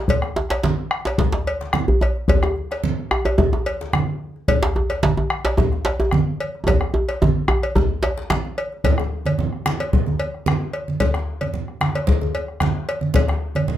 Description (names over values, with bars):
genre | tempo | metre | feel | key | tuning
west african traditional, West African drum ensemble | 110 BPM | 4/4 | straight | none | none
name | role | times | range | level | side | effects
bombo | percussion | 0.1-13.8 s | none | -22 LUFS | left 2 dB | none
congas | percussion | 0.1-13.8 s | none | -23 LUFS | right 3 dB | none
cowbell | percussion | 0.1-13.7 s | none | -25 LUFS | left 1 dB | none
djembe | percussion | 0.1-13.4 s | none | -26 LUFS | left 3 dB | none
djembe | percussion | 0.4-8.4 s | none | -21 LUFS | right 1 dB | none
room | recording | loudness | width
moderate studio reverb, RT60 0.6 s | none | -18 LUFS | side -12 dB against mid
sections
0.0-8.8 A section; 8.8-13.8 B section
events
speeding up 0.0-13.8; drum fill 6.7-8.8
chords
none